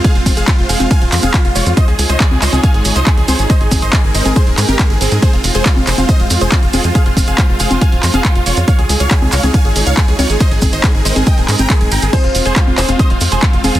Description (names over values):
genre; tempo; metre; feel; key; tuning
uplifting trance; 139 BPM; 4/4; straight; F minor; A4 = 444 Hz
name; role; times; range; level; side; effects
big supersaw lead; melody; 0.0-13.8 s; C4 to Bb5; -18 LUFS; right 1 dB; phaser, sidechain pumping, digital delay
supersaw pad; sustained chords; 0.0-13.8 s; Ab3 to Db5; -22 LUFS; right 1 dB; sidechain pumping
electronic kick drum; drums; 0.0-13.5 s; none; -12 LUFS; equal; overdrive
punchy analog drum machine; drums; 0.0-13.8 s; congas, crash cymbal, handclaps, hi-hat; -18 LUFS; equal; none
maracas; percussion; 0.0-13.8 s; none; -25 LUFS; right 2 dB; none
tight sequencer bass; bass; 0.2-13.8 s; Eb1 to Ab2; -16 LUFS; equal; sidechain pumping
dark baby grand piano; second line; 12.1-13.2 s; C4 to C5; -20 LUFS; left 1 dB; digital delay
room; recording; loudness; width
digital ambience; dense, heavily limited modern master; -10 LUFS; side -14 dB against mid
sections
0.0-13.8 A section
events
none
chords
0.0 Fm; 1.8 Dbadd9; 3.5 Abadd9; 5.2 Fm; 8.7 Dbadd9; 10.4 Abadd9; 12.1 Fm